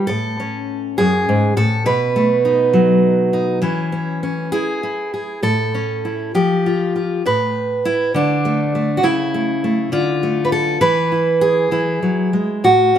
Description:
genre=folk, solo fingerstyle acoustic guitar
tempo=67 BPM (dotted quarters)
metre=6/8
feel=rubato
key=A major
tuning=A4 = 440 Hz
part: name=fingerpicked steel-string acoustic guitar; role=solo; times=0.0-13.0 s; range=F#2 to B4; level=-15 LUFS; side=equal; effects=none
room=moderate stone room reverb, RT60 1.0 s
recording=band playing live in one room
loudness=-15 LUFS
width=side -9 dB against mid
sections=0.0-5.4 A section; 5.4-13.0 B section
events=none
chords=0.1 A; 1.9 B7; 3.6 A/E; 4.5 E; 5.4 A; 6.3 N.C.; 8.2 D5; 9.0 A/C#; 9.9 Dm; 10.8 E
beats=| 0.07 0.97 | 1.86 2.73 | 3.62 4.52 | 5.43 6.34 | 7.25 8.15 | 9.04 9.93 | 10.81 11.72 | 12.64

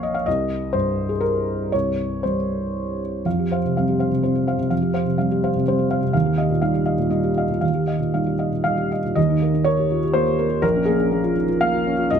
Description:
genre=neoclassical minimalist piano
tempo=116-128 BPM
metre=3/4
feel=rubato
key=unclear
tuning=A4 = 440 Hz
part: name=felt-muted upright piano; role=solo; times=0.0-12.2 s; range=Bb1 to F5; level=-18 LUFS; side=equal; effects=none
room=little or no reverb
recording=close, detailed microphones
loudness=-19 LUFS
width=side -7 dB against mid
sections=0.0-3.3 A section; 3.3-9.2 B section; 9.2-12.2 C section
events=none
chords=0.3 Cm; 3.3 Fsus2; 6.1 Ebadd9; 10.6 Bbm7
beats=| 0.26 0.74 1.23 | 1.73 2.24 2.75 | 3.25 3.75 4.23 | 4.72 5.19 5.67 | 6.14 6.62 7.11 | 7.62 8.14 8.65 | 9.16 9.66 10.15 | 10.63 11.12 11.61 | 12.09

